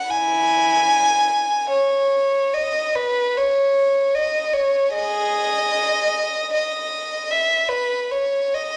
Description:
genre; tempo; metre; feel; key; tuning
classical, free, expressive piece for unaccompanied violin; 75 BPM; 3/4; uneven beats, rubato; unclear; A4 = 439 Hz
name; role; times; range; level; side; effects
warm violin; solo; 0.0-8.8 s; E4 to G#5; -20 LUFS; equal; none
room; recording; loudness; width
moderate recital hall reverb, RT60 1.5 s; none; -20 LUFS; mono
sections
0.0-8.8 A section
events
none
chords
none

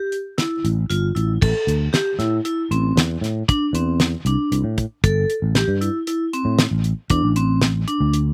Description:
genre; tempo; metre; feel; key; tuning
progressive instrumental, band music in an uneven meter; 116 BPM; 7/4; straight; A minor; A4 = 441 Hz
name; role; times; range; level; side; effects
vibraphone with hard mallets; arpeggios; 0.0-8.2 s; C4 to A4; -24 LUFS; equal; none
damped 70s drum kit; drums; 0.1-8.3 s; crash cymbal, hi-hat, kick drum, snare drum; -23 LUFS; equal; none
sustaining fretless electric bass; bass; 0.6-8.3 s; G1 to A2; -22 LUFS; equal; none
room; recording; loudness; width
little or no reverb; recorded outdoors, with no room sound; -20 LUFS; mono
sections
0.0-1.4 A section; 1.4-8.3 B section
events
none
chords
0.0 Em; 1.4 Am

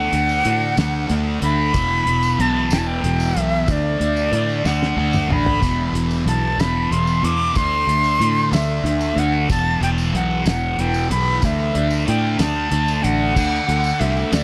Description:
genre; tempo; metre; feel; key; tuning
psychedelic rock; 62 BPM (dotted quarters); 6/8; straight; unclear; A4 = 443 Hz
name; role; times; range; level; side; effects
breathy bright jazz flute; melody; 0.0-14.4 s; D5 to D6; -24 LUFS; equal; analog delay
thick fuzz guitar; riff; 0.0-14.4 s; E2 to D4; -24 LUFS; equal; distortion, phaser, analog delay
fingered electric bass; bass; 0.0-14.4 s; E1 to A2; -25 LUFS; equal; none
cloth-damped thuddy drum kit; drums; 0.1-14.4 s; crash cymbal, hi-hat, kick drum, snare drum, splash cymbal, toms; -25 LUFS; equal; none
tambourine; percussion; 0.3-14.4 s; none; -38 LUFS; equal; none
room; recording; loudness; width
light reverb, small room ambience; echo-heavy mix; -19 LUFS; mono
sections
0.0-13.4 A section; 13.4-14.4 B section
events
drum fill 4.7-5.6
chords
0.0 D; 1.7 E5; 3.7 D; 5.6 E5; 7.6 D5; 9.5 E5; 11.4 Dsus2; 13.4 D

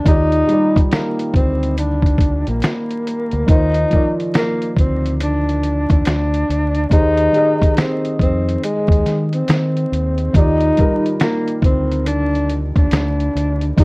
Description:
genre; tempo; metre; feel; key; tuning
lo-fi hip hop; 70 BPM; 4/4; swing 63% on 16ths; Eb major; A4 = 440 Hz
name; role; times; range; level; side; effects
breathy tenor saxophone; melody; 0.0-13.8 s; Ab3 to Eb4; -19 LUFS; left 1 dB; low-pass filter
felt-muted upright piano; accompaniment; 0.0-13.8 s; Eb3 to Eb5; -22 LUFS; right 1 dB; cassette tape, low-pass filter
deep dub fingered electric bass; bass; 0.1-13.8 s; Bb1 to Eb3; -19 LUFS; equal; none
dusty soul sampler-style drum kit; drums; 0.1-13.8 s; finger snaps, hi-hat, kick drum, snare drum; -16 LUFS; equal; vintage 12-bit sampler grit
room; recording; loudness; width
moderate small room reverb, RT60 0.5 s; worn, warbling old tape, cassette tape, vinyl crackle, warbly pitch drift; -14 LUFS; side -26 dB against mid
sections
0.0-13.8 A section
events
none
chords
0.0 Ebmaj7; 3.5 Cm11; 6.9 Fm9/Eb (rootless); 10.3 Ebmaj7

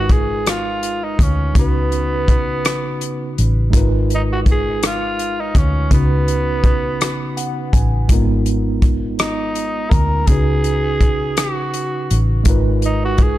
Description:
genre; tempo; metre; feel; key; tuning
slow six-eight R&B; 55 BPM (dotted quarters); 6/8; straight; G# dorian; A4 = 440 Hz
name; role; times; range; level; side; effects
raspy tenor saxophone; melody; 0.0-13.4 s; B3 to A#4; -22 LUFS; equal; ping-pong delay
tine electric piano; accompaniment; 0.0-13.4 s; C#3 to G#5; -23 LUFS; right 2 dB; medium stereo tremolo
vintage muted fingered electric bass; bass; 0.0-13.4 s; G#1 to D2; -19 LUFS; equal; none
warm soul drum kit; drums; 0.1-13.4 s; hi-hat, kick drum, rim click; -16 LUFS; equal; none
room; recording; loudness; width
small room reverb; dark, warm production; -15 LUFS; side -15 dB against mid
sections
0.0-13.4 A section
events
tine electric piano fill 7.0-8.1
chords
0.0 G#m69; 1.5 C#7sus4; 3.7 G#m69; 5.9 C#7sus4; 8.1 G#m69; 10.3 C#7sus4; 12.5 G#m69

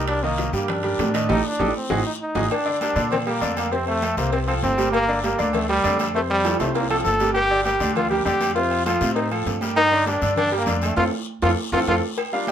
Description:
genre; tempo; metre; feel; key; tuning
latin, salsa; 198 BPM; 4/4; straight; G minor; A4 = 440 Hz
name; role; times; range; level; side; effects
brilliant trombone; melody; 0.0-12.0 s; G3 to A4; -22 LUFS; equal; none
bright upright piano; accompaniment; 0.0-12.5 s; C3 to G5; -25 LUFS; equal; none
upright bass; bass; 0.0-12.0 s; G1 to Bb2; -27 LUFS; equal; none
bongos and cowbell; percussion; 0.1-12.5 s; none; -30 LUFS; left 7 dB; none
congas; percussion; 0.1-12.5 s; none; -32 LUFS; right 2 dB; none
guiro; percussion; 0.1-12.5 s; none; -36 LUFS; left 6 dB; none
timbales and agogo bells; percussion; 0.1-12.5 s; none; -30 LUFS; right 5 dB; none
room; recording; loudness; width
moderate studio reverb, RT60 0.6 s; minimal, uncompressed stereo recording; -19 LUFS; side -9 dB against mid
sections
0.0-2.5 A section; 2.5-12.2 B section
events
drum fill 1.3-2.5, 6.4-7.4, 11.0-12.2; band accent 1.3-2.5, 11.0-12.2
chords
0.1 Cm9; 1.3 Am7b5; 1.9 Ab5; 2.5 Gm; 3.7 F; 4.9 Gm; 6.1 F; 7.4 Gm; 8.6 F; 9.8 Gm; 11.0 F

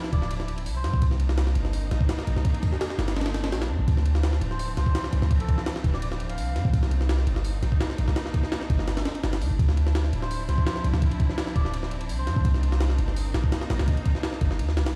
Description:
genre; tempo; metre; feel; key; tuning
drum and bass, jungle; 168 BPM; 4/4; straight; unclear; A4 = 441 Hz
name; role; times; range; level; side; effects
clear symphonic string section; sustained chords; 0.0-15.0 s; E3 to E4; -38 LUFS; equal; none
breakbeat sampler-style drum kit; drums; 0.0-14.9 s; hi-hat, kick drum, ride cymbal, snare drum; -29 LUFS; equal; studio reverb
melodica; melody; 0.1-1.1, 4.5-6.7, 10.2-12.5 s; A4 to F5; -39 LUFS; equal; vintage 12-bit sampler grit, dub echo
warm 808-style bass; bass; 0.1-15.0 s; D1 to G2; -27 LUFS; equal; tube saturation
room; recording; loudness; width
little or no reverb; played on a big sound system in a bare room, stone room reverb, vinyl crackle; -25 LUFS; mono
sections
0.0-15.0 A section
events
none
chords
0.0 Dm9; 1.0 Cm9; 3.9 Dm9; 6.7 Cm9; 9.6 Dm9; 12.4 Cm9

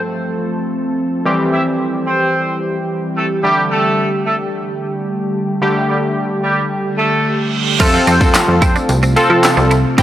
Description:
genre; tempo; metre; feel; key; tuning
dance-pop; 110 BPM; 4/4; straight; unclear; A4 = 440 Hz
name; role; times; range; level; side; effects
warm analog keys; accompaniment; 0.0-10.0 s; D3 to A4; -18 LUFS; equal; chorus, sidechain pumping
glassy FM pad; sustained chords; 0.0-10.0 s; C3 to A4; -21 LUFS; equal; ensemble chorus, built-in reverb, sidechain pumping
clear horn section; melody; 1.5-8.7 s; G3 to E5; -19 LUFS; right 1 dB; sidechain pumping
reverse cymbal; sound effects; 7.2-7.8 s; none; -22 LUFS; right 7 dB; none
twelve-string electric guitar; riff; 7.8-10.0 s; C4 to F4; -21 LUFS; right 4 dB; ensemble chorus
plucky analog bass; bass; 7.8-10.0 s; C2 to F3; -15 LUFS; equal; sidechain pumping
pop drum kit; drums; 7.8-10.0 s; crash cymbal, handclaps, hi-hat, kick drum, snare drum; -15 LUFS; equal; none
tambourine; percussion; 7.8-10.0 s; none; -28 LUFS; left 2 dB; none
room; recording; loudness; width
moderate lush hall reverb, RT60 2.4 s; dry, gritty hardware recording; -13 LUFS; side -12 dB against mid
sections
0.0-7.8 A section; 7.8-10.0 B section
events
reverse cymbal 7.2-7.8; drop 7.8-10.0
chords
0.0 F; 1.3 C; 3.4 Gsus2; 7.8 F

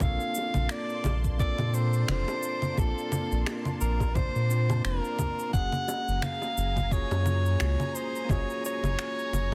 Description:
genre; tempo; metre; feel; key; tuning
sunset chillout; 87 BPM; 4/4; swing 56% on 16ths; unclear; A4 = 440 Hz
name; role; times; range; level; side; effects
warm soprano saxophone; melody; 0.0-9.5 s; A4 to Gb5; -35 LUFS; equal; tape echo
tine electric piano; accompaniment; 0.0-9.5 s; Bb3 to A5; -39 LUFS; equal; none
lush unison pad; sustained chords; 0.0-9.5 s; Bb3 to C6; -44 LUFS; equal; chorus, phaser
round analog bass; bass; 0.0-9.5 s; F1 to Bb2; -30 LUFS; equal; none
electronic congas, shaker and finger snaps; drums; 0.0-9.5 s; none; -36 LUFS; equal; soft clipping on snare
electronic kick drum; drums; 0.0-9.5 s; none; -31 LUFS; equal; none
bongos; percussion; 0.4-9.0 s; none; -41 LUFS; equal; none
room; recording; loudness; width
digital ambience; dense, heavily limited modern master; -28 LUFS; mono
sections
0.0-9.5 A section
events
none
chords
0.0 Bbmaj9; 5.5 Gbmaj9

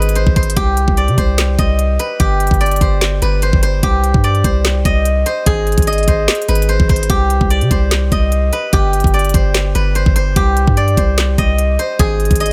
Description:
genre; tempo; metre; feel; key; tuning
hip hop, trap; 147 BPM; 4/4; half-time; C harmonic minor; A4 = 440 Hz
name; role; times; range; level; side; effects
steel-string zither; melody; 0.0-12.5 s; G4 to Eb5; -20 LUFS; equal; low-pass filter, tape echo
long sustained 808-style bass; bass; 0.0-12.5 s; G1 to C3; -18 LUFS; equal; none
trap drum kit; drums; 0.0-12.5 s; handclaps, hi-hat, kick drum, snare drum; -18 LUFS; equal; none
room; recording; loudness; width
little or no reverb; none; -14 LUFS; mono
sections
0.0-12.5 A section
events
none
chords
0.0 Ab; 0.6 Cm; 2.2 Gsus4; 3.8 Cm; 5.5 Ab; 7.1 Cm; 8.7 Gsus4; 10.4 Cm; 12.0 Ab

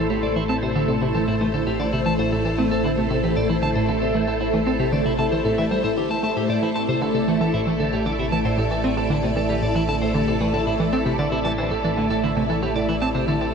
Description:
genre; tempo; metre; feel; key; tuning
ambient, sequencer-driven space music; 115 BPM; 4/4; straight; A minor; A4 = 439 Hz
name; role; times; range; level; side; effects
phased string machine; sustained chords; 0.0-13.5 s; A3 to D5; -23 LUFS; equal; ensemble chorus, phaser
electric guitar at the edge of break-up; arpeggios; 0.0-13.5 s; A3 to A5; -26 LUFS; moving between left 2 dB and right 5 dB; auto-pan, low-pass filter, tape echo
analog pluck; riff; 0.0-13.5 s; A2 to C4; -25 LUFS; equal; chorus, tape echo
fat analog bass; bass; 0.0-13.5 s; A1; -30 LUFS; equal; none
room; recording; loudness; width
wet huge ambient reverb, RT60 8.0 s; dark, warm production; -19 LUFS; side -6 dB against mid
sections
0.0-13.5 A section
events
filter sweep on synth arpeggio sound 0.0-13.5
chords
0.0 Am

